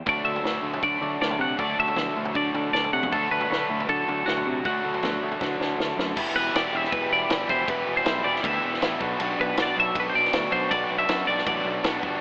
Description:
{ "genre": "indie rock", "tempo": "158 BPM", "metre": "4/4", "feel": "straight", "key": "unclear", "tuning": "A4 = 439 Hz", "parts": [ { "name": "twelve-string electric guitar", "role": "melody", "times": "0.1-12.0 s", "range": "F#4 to F#5", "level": "-25 LUFS", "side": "equal", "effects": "none" }, { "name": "cranked stack guitar", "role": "riff", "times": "0.1-12.2 s", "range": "B2 to G4", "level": "-30 LUFS", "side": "equal", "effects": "overdrive" }, { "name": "overdriven electric guitar", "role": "riff", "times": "0.1-12.2 s", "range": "E2 to F#4", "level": "-30 LUFS", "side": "equal", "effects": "lush chorus, analog delay" }, { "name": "picked electric bass", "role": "bass", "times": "0.1-12.2 s", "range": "E1 to D3", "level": "-32 LUFS", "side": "equal", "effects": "none" }, { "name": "compact cocktail drum kit", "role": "drums", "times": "0.1-12.1 s", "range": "crash cymbal, kick drum, ride cymbal, snare drum, toms", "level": "-30 LUFS", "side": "equal", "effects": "none" } ], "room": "light reverb, small room ambience", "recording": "AM radio sound", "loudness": "-22 LUFS", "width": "side -33 dB against mid", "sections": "0.0-6.2 A section; 6.2-12.2 B section", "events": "drum fill 5.4-6.2", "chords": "0.1 D; 6.2 Em; 9.0 Bm" }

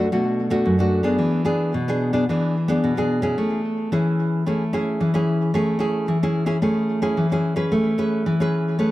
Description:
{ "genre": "samba", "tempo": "111 BPM", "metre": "4/4", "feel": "straight", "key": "A major", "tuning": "A4 = 441 Hz", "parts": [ { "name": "nylon-string guitar", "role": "solo", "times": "0.0-8.9 s", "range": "F#2 to B4", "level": "-19 LUFS", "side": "equal", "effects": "tape echo" } ], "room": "moderate studio ambience, RT60 0.5 s", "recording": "dark, warm production", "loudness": "-19 LUFS", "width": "side -16 dB against mid", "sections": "0.0-7.7 A section; 7.7-8.9 B section", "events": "none", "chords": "0.0 Bm7; 1.2 E7; 3.4 Amaj9" }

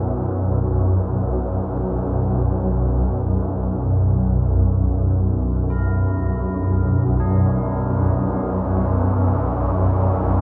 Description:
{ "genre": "dark ambient drone", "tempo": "free time", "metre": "none", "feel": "none", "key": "unclear", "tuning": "A4 = 443 Hz", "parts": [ { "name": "deep dark ambient pad", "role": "sustained chords", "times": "0.0-10.4 s", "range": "B3 to E4", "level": "-36 LUFS", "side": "equal", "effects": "none" }, { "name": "swarming drone", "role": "drone", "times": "0.0-10.4 s", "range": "B1 to F#2", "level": "-20 LUFS", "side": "equal", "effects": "built-in reverb" }, { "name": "tubular bells", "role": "arpeggios", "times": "5.7-10.4 s", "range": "D4 to E4", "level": "-36 LUFS", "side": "equal", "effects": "tape echo" } ], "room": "moderate huge ambient reverb, RT60 8.1 s", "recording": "in a vast, echoing space", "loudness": "-20 LUFS", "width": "mono", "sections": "0.0-10.4 A section", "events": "fade-in on tubular bells 0.0-10.4", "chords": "0.0 Bm" }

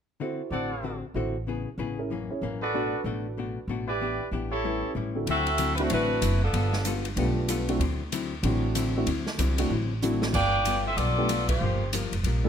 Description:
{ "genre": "jazz, big band swing", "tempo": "189 BPM", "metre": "4/4", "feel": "swing 62% on 8ths", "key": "D mixolydian", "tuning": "A4 = 440 Hz", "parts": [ { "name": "archtop guitar, miked and amplified", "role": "accompaniment", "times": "0.2-12.5 s", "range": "F#2 to A4", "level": "-33 LUFS", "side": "left 7 dB", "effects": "none" }, { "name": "warm grand piano", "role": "accompaniment", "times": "0.2-12.5 s", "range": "D3 to C#5", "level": "-31 LUFS", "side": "right 1 dB", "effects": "none" }, { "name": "clear trumpet section", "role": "stabs", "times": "0.5-4.9 s", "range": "E4 to F#5", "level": "-30 LUFS", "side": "right 2 dB", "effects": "none" }, { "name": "upright bass", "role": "bass", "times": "0.5-12.5 s", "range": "F1 to D2", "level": "-29 LUFS", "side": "right 1 dB", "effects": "none" }, { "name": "warm saxophone section", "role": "melody", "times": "5.3-6.9, 10.3-11.9 s", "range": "F3 to G5", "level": "-26 LUFS", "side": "equal", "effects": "none" }, { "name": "swinging big-band drum kit", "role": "drums", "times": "5.3-12.3 s", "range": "crash cymbal, hi-hat, kick drum, ride cymbal, snare drum", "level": "-33 LUFS", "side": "equal", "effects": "none" } ], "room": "light reverb", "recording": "close, detailed microphones", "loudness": "-25 LUFS", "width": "side -8 dB against mid", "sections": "0.2-5.3 A section; 5.3-12.5 B section", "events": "drum fill 10.0-10.3; band accent 11.5", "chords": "0.2 D7; 1.5 C#m7; 2.1 F#7; 2.7 Bm7; 4.0 Em7; 4.6 A7; 5.3 D9; 6.5 G9; 7.8 D9; 10.3 G9; 11.6 Gm7" }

